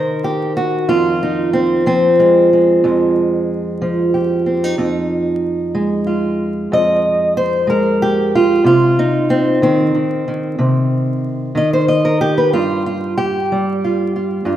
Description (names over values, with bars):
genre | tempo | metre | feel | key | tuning
acoustic country blues, solo or duo | 62 BPM (dotted quarters) | 12/8 | straight | C minor | A4 = 435 Hz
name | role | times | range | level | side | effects
fingerpicked old ladder-braced acoustic guitar | solo | 0.0-14.6 s | F2 to Eb5 | -13 LUFS | equal | none
room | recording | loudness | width
wet concert hall reverb, RT60 1.9 s | recorded in a church or concert hall, vinyl crackle | -13 LUFS | side -12 dB against mid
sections
0.0-14.6 A section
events
none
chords
0.0 Cm7; 0.9 Fm9; 8.7 Cm; 12.5 G7(no3)